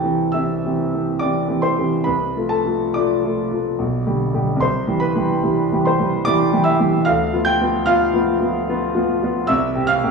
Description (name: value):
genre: classical, romantic character piece for solo piano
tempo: 73 BPM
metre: 3/4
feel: rubato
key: C major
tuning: A4 = 439 Hz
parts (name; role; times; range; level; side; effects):
- warm grand piano; solo; 0.0-10.1 s; B1 to G6; -16 LUFS; equal; none
room: moderate recital hall reverb, RT60 1.7 s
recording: worn, warbling old tape, cassette tape, warbly pitch drift, studio ambience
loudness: -16 LUFS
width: side -4 dB against mid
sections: 0.0-10.1 A section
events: none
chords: 0.0 C; 2.1 Dm7/C; 3.8 G/B; 4.6 C; 7.1 Bdim/D; 9.5 C